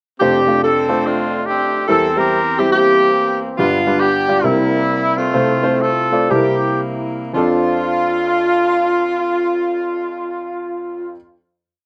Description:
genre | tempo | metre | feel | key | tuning
gospel | 107-142 BPM | 4/4 | swing 65% on 8ths | F major | A4 = 438 Hz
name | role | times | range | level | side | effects
clear horn section | melody | 0.2-11.1 s | G3 to Bb4 | -18 LUFS | equal | none
warm grand piano | accompaniment | 0.2-11.2 s | F1 to D5 | -21 LUFS | equal | slapback echo
room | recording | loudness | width
little or no reverb | recorded outdoors, with no room sound | -16 LUFS | mono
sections
0.2-7.3 breakdown; 7.3-11.8 final chord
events
slowing down 3.6-7.3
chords
0.2 F6; 1.9 C7/E; 3.6 G7; 4.4 C7; 5.3 F/C; 6.3 C7; 7.3 F6

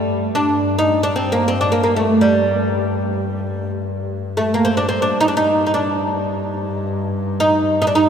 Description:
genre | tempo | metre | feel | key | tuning
Arabic maqam ensemble | free time | none | none | G minor | A4 = 439 Hz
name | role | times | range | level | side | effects
rich double bass | drone | 0.0-8.1 s | G2 | -24 LUFS | left 1 dB | none
oud | melody | 0.4-8.1 s | G3 to Eb4 | -16 LUFS | right 1 dB | none
room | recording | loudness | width
wet cathedral reverb, RT60 5.1 s | recorded in a church or concert hall | -16 LUFS | side -7 dB against mid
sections
0.1-8.1 A section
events
none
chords
none

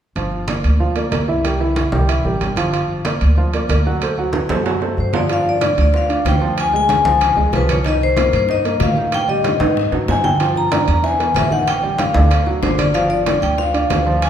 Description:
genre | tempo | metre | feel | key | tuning
Afro-Cuban jazz | 188 BPM | 4/4 | straight | G dorian, G minor from 5.3 s | A4 = 440 Hz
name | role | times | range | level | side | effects
warm baby grand piano | accompaniment | 0.2-14.3 s | D3 to F#5 | -21 LUFS | right 2 dB | none
upright bass | bass | 0.2-14.3 s | G1 to A2 | -20 LUFS | equal | none
congas | percussion | 0.2-14.3 s | none | -25 LUFS | equal | none
timbales | percussion | 0.2-14.3 s | none | -26 LUFS | right 5 dB | none
vibraphone with medium hard mallets | melody | 5.0-14.3 s | B4 to Bb5 | -18 LUFS | left 3 dB | none
bongos | percussion | 5.3-14.3 s | none | -26 LUFS | left 4 dB | none
room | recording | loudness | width
wet recital hall reverb, RT60 1.5 s | recorded in a church or concert hall | -14 LUFS | side -9 dB against mid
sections
0.2-5.3 A section; 5.3-14.3 B section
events
drum fill 4.3-5.3, 9.6-10.4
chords
0.2 Gm7; 1.4 C7; 2.7 Gm7; 4.0 D7; 5.3 G5; 6.6 Ddim; 7.2 C#; 7.8 Cm7; 9.1 Ebadd11; 9.8 Ab5; 10.4 Gm7; 11.0 E; 11.7 F13/A; 12.3 Dadd11; 12.9 G5

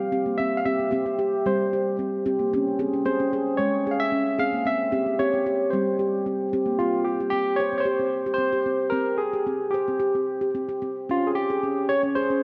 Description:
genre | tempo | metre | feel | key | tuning
world meditative, meditative tuned percussion | 112 BPM | 4/4 | straight | C phrygian dominant | A4 = 442 Hz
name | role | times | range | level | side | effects
barky tine electric piano | melody | 0.0-12.4 s | F4 to F5 | -28 LUFS | equal | overdrive, tape echo
handpan | arpeggios | 0.0-12.4 s | G3 to Db5 | -27 LUFS | equal | none
room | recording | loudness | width
wet lush hall reverb, RT60 2.2 s | none | -24 LUFS | mono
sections
0.0-6.8 A section; 6.8-12.4 B section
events
none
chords
0.0 C; 2.5 Db5/C; 4.7 C; 6.8 C5; 11.1 Db5

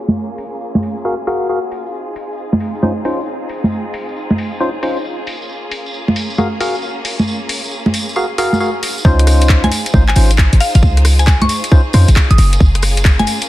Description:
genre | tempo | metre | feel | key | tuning
UK garage, two-step garage | 135 BPM | 4/4 | swing 65% on 16ths | Db major | A4 = 440 Hz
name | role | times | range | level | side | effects
bright symphonic violin section | sustained chords | 0.0-13.5 s | Bb3 to C5 | -26 LUFS | equal | sidechain pumping, low-pass filter
garage drum kit | drums | 0.1-13.5 s | congas, handclaps, hi-hat, rim click | -17 LUFS | right 1 dB | low-pass filter on hats, low-pass filter on perc, low-pass filter on snare
tambourine | percussion | 0.1-13.5 s | none | -27 LUFS | right 3 dB | none
percussive organ stab | stabs | 1.0-12.1 s | Db4 to F5 | -19 LUFS | left 1 dB | chorus, tape echo
short 808-style bass | bass | 9.0-13.2 s | Gb1 to F2 | -10 LUFS | equal | none
electronic kick drum | drums | 9.0-13.2 s | none | -10 LUFS | equal | none
mallet-like synth pluck | melody | 9.6-13.3 s | F5 to Eb6 | -21 LUFS | left 1 dB | chorus, tape echo
room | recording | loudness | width
light reverb, digital ambience | dense, heavily limited modern master, vinyl crackle, low-pass filter | -12 LUFS | side -15 dB against mid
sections
0.0-9.0 A section; 9.0-13.5 B section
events
filter sweep on drum 0.0-9.0; filter sweep on violin section 0.0-9.0; filter sweep 0.0-9.0; drop 9.0-13.5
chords
0.0 Gbmaj9; 1.9 Dbmaj9; 5.3 Gbmaj9; 9.0 Dbmaj9; 12.4 Gbmaj9

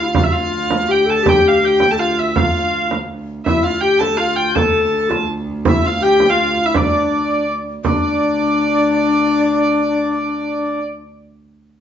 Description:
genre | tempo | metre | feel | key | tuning
medieval dance | 164 BPM | 3/4 | straight | D minor | A4 = 440 Hz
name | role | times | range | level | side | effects
warm hurdy-gurdy | melody | 0.0-10.8 s | D5 to A5 | -18 LUFS | right 2 dB | none
breathy mellow bass recorder | second line | 0.0-10.8 s | D4 to A4 | -17 LUFS | left 4 dB | none
dark viola da gamba | drone | 0.0-10.8 s | D2 | -26 LUFS | right 2 dB | none
frame drum | percussion | 0.1-8.0 s | none | -19 LUFS | right 3 dB | none
room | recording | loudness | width
wet large studio reverb, RT60 0.9 s | band playing live in one room, nothing above 7.7 kHz | -14 LUFS | side -9 dB against mid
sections
0.0-7.9 A section; 7.9-10.0 B section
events
none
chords
none

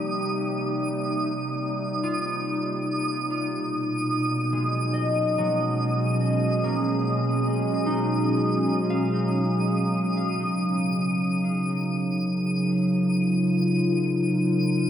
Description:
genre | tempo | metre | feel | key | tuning
ambient | 71 BPM | 4/4 | straight | Eb minor | A4 = 435 Hz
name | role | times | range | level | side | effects
warbly tape-like pad | sustained chords | 0.0-14.9 s | Cb3 to Bb4 | -23 LUFS | equal | chorus, built-in reverb
concert harp | arpeggios | 0.0-12.3 s | F3 to F5 | -32 LUFS | left 2 dB | tape echo
twinkling granular texture | texture | 0.0-14.9 s | Eb6 to Eb7 | -31 LUFS | right 1 dB | built-in reverb
room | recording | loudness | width
wet huge ambient reverb, RT60 9.2 s | none | -22 LUFS | side -9 dB against mid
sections
0.0-10.2 A section; 10.2-14.9 B section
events
none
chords
0.0 Cm7; 3.5 Db7sus4; 10.2 Ebm9

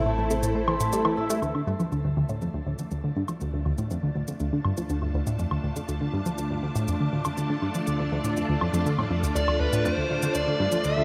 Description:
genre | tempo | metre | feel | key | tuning
ambient, sequencer-driven space music | 121 BPM | 4/4 | straight | D minor | A4 = 440 Hz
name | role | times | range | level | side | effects
string machine, full ensemble | sustained chords | 0.0-11.0 s | A3 to A5 | -33 LUFS | equal | ensemble chorus, shimmer reverb
round analog bass | bass | 0.0-1.4 s | A1 | -34 LUFS | equal | none
vibraphone with hard mallets | arpeggios | 0.1-1.4 s | A4 to E6 | -33 LUFS | equal | shimmer reverb, analog delay
tight sequenced synth | riff | 0.1-11.0 s | D2 to A3 | -29 LUFS | equal | chorus, phaser, analog delay
shaker and woodblock | percussion | 0.3-10.9 s | none | -35 LUFS | equal | analog delay
smooth overdriven lead guitar | melody | 9.4-11.0 s | B4 to E5 | -29 LUFS | equal | shimmer reverb, analog delay
room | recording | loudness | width
moderate plate reverb, RT60 2.9 s | dreamy mix soaked in reverb | -27 LUFS | mono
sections
0.0-1.4 A section; 1.4-11.0 B section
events
filter sweep on synth arpeggio sound 0.0-1.4; fade-in on string machine 1.4-11.0; fade-in on drum 1.4-11.0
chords
0.0 Am; 1.4 Dm

